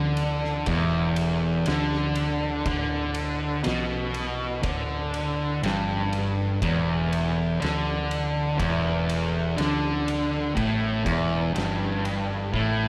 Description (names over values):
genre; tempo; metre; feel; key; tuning
stoner and doom metal; 61 BPM; 4/4; straight; E minor; A4 = 440 Hz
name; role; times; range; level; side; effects
fuzz guitar; riff; 0.0-12.9 s; E2 to D3; -27 LUFS; equal; distortion
hollow-body short-scale fingered electric bass; bass; 0.0-12.9 s; E1 to D2; -33 LUFS; equal; overdrive
oversized low-tuned drum kit; drums; 0.2-12.8 s; kick drum, ride cymbal, snare drum; -35 LUFS; equal; none
room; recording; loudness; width
small room ambience; none; -26 LUFS; mono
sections
0.0-12.9 A section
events
drum fill 12.5-12.9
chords
0.0 Em